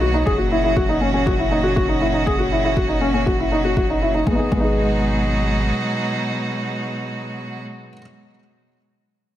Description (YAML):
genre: piano and strings electronica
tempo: 120 BPM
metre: 4/4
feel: straight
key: G# minor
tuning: A4 = 440 Hz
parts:
  - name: clear string quartet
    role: sustained chords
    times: 0.0-7.6 s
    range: A#2 to F#4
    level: -23 LUFS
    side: right 1 dB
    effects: sidechain pumping
  - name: felt-muted upright piano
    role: riff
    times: 0.0-8.0 s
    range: G#3 to G#4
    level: -21 LUFS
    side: left 1 dB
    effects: digital delay
  - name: warm sub bass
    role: bass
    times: 0.0-5.7 s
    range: F#1 to B1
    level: -24 LUFS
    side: equal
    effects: sidechain pumping
  - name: electronic hi-hat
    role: drums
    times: 0.0-4.2 s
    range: none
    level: barely audible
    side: none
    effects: none
  - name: electronic kick drum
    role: drums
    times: 0.3-4.7 s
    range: none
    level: -24 LUFS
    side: equal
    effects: small room ambience
room: moderate scoring stage reverb, RT60 2.0 s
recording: none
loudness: -17 LUFS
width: side -12 dB against mid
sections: 0.0-4.3 A section; 4.3-8.3 B section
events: none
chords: 0.3 F#; 4.3 G#m7